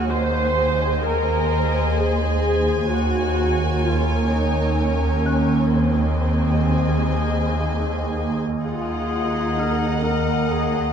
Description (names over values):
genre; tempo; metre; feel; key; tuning
cinematic, suspense film score; 64 BPM; 3/4; straight; unclear; A4 = 435 Hz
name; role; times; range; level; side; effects
warm studio violin section; melody; 0.0-10.9 s; Gb5 to Ab5; -31 LUFS; left 5 dB; none
warm chamber violin section; second line; 0.0-10.9 s; Bb4 to Eb5; -31 LUFS; left 4 dB; none
warm studio viola section; accompaniment; 0.0-10.9 s; Bb3 to C5; -25 LUFS; equal; none
flickering grainy texture; sustained chords; 0.0-10.9 s; Ab4 to Bb5; -29 LUFS; equal; built-in reverb
warm studio cello section; bass; 0.0-10.9 s; Eb2 to F4; -26 LUFS; right 1 dB; none
warm studio double bass section; bass; 0.0-10.9 s; Eb2; -24 LUFS; right 2 dB; none
swarming drone; drone; 0.0-10.9 s; Eb2; -29 LUFS; right 1 dB; built-in reverb
clear baby grand piano; texture; 0.0-10.9 s; Eb5 to Gb6; -37 LUFS; equal; none
clear clarinet; second line; 8.6-10.9 s; Ab4 to Bb4; -26 LUFS; left 6 dB; none
room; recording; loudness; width
moderate scoring stage reverb, RT60 1.5 s; dark, warm production; -18 LUFS; side -7 dB against mid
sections
0.0-8.6 A section; 8.6-10.9 B section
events
none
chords
0.1 Ab/Eb; 2.9 Gbadd9/Eb; 5.7 Ab/Eb; 8.6 Ebm